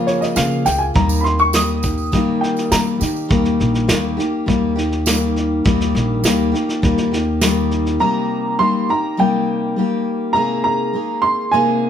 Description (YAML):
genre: acoustic folk duo or small band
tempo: 102 BPM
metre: 4/4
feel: straight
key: unclear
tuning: A4 = 439 Hz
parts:
  - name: picked steel-string acoustic guitar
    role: accompaniment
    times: 0.0-11.9 s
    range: C3 to Ab4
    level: -18 LUFS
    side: left 2 dB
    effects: none
  - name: dark upright piano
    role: melody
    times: 0.1-2.8, 8.0-11.9 s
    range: Db5 to Eb6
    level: -18 LUFS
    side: right 2 dB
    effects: none
  - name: soft brush drum kit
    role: drums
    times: 0.1-7.9 s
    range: kick drum, snare drum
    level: -21 LUFS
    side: right 1 dB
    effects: none
  - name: tambourine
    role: percussion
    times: 0.1-7.6 s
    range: none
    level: -28 LUFS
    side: right 7 dB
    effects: none
  - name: upright bass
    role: bass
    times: 0.4-8.0 s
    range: Bb1 to Eb3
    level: -22 LUFS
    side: equal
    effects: none
room: moderate studio reverb, RT60 0.7 s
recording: none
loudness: -15 LUFS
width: side -9 dB against mid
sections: 0.0-3.3 A section; 3.3-8.0 B section; 8.0-11.9 C section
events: upright piano solo 0.0-3.3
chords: 0.0 Db6; 1.0 Eb; 8.0 Cm7; 10.3 Abadd9/C